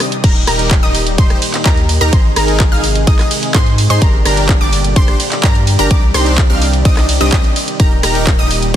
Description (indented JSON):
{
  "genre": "EDM, festival progressive house",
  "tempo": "127 BPM",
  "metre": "4/4",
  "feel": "straight",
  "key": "Eb major",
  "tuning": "A4 = 440 Hz",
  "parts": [
    { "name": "lush unison pad", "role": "sustained chords", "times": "0.0-8.8 s", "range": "Bb2 to D5", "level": "-22 LUFS", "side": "equal", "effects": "chorus, sidechain pumping" },
    { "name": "pop drum kit", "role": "drums", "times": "0.0-8.8 s", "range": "crash cymbal, handclaps, hi-hat, ride cymbal, rim click", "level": "-18 LUFS", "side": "right 1 dB", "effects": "none" },
    { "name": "wide unison pluck", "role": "arpeggios", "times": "0.2-8.5 s", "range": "Bb5 to F6", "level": "-21 LUFS", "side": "equal", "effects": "sidechain pumping, ping-pong delay" },
    { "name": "supersaw chords", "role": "riff", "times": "0.2-8.8 s", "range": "C4 to F5", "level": "-19 LUFS", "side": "equal", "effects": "sidechain pumping, ping-pong delay" },
    { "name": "saturated sub bass", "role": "bass", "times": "0.2-8.8 s", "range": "Eb1 to Ab2", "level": "-16 LUFS", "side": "equal", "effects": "sidechain pumping" },
    { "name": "electronic kick drum", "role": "drums", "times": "0.2-8.8 s", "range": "none", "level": "-12 LUFS", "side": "equal", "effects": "overdrive" }
  ],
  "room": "light reverb",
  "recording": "dense, heavily limited modern master",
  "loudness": "-10 LUFS",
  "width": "side -11 dB against mid",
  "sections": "0.2-8.8 A section",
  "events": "break 0.0; drop 0.2-8.8",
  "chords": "0.2 Eb; 2.1 Ab; 4.0 Gm; 5.9 Cmadd9; 7.8 Eb"
}